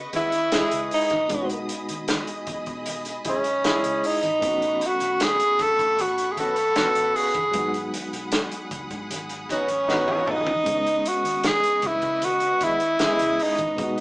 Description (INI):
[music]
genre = lush 1970s-style soul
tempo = 77 BPM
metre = 4/4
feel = straight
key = C# minor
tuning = A4 = 440 Hz
[part]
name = barky reed electric piano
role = accompaniment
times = 0.0-14.0 s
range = B2 to D#5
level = -34 LUFS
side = equal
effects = overdrive, fast tremolo
[part]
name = clear studio string section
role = sustained chords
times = 0.0-14.0 s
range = A3 to D#6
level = -34 LUFS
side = equal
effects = none
[part]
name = vintage muted fingered electric bass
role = bass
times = 0.0-14.0 s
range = F#1 to C#3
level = -43 LUFS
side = equal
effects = none
[part]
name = clear horn section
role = stabs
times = 0.1-13.6 s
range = G#3 to G#4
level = -28 LUFS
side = equal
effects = none
[part]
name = vintage drum kit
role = drums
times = 0.1-14.0 s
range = hi-hat, kick drum, snare drum, toms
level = -29 LUFS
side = equal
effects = none
[part]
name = congas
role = percussion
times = 0.1-14.0 s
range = none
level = -43 LUFS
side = equal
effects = none
[part]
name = breathy tenor saxophone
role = melody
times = 0.2-14.0 s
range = C#4 to A4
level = -21 LUFS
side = equal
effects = none
[sound]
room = moderate small room reverb, RT60 0.5 s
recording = band playing live in one room, small speaker sound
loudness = -21 LUFS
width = side -24 dB against mid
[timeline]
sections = 0.0-14.0 A section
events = drum fill 9.9-10.7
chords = 0.0 C#m9; 1.3 Emaj7/B; 4.4 A69; 7.5 G#m7; 10.7 C#m9